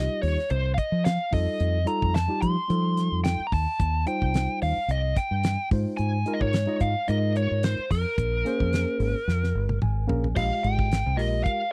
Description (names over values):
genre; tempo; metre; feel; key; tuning
electric jazz fusion; 110 BPM; 4/4; swing 54% on 16ths; unclear; A4 = 440 Hz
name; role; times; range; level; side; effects
biting lead guitar; melody; 0.0-11.7 s; Bb4 to C6; -31 LUFS; equal; overdrive
bright tine electric piano; accompaniment; 0.0-11.6 s; G3 to Ab5; -33 LUFS; equal; none
fingered electric bass; bass; 0.0-11.4 s; G1 to F3; -28 LUFS; equal; none
damped 70s drum kit; drums; 0.2-11.6 s; crash cymbal, hi-hat, kick drum, snare drum, toms; -30 LUFS; equal; none
room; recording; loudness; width
little or no reverb; dry, close 1970s-style studio recording; -25 LUFS; mono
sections
0.0-10.4 A section; 10.4-11.7 B section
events
drum fill 9.3-10.4; tine electric piano fill 9.5-10.4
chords
0.0 F7sus2; 1.3 F9; 5.7 Ab6; 8.2 Bbm9; 10.4 Fm9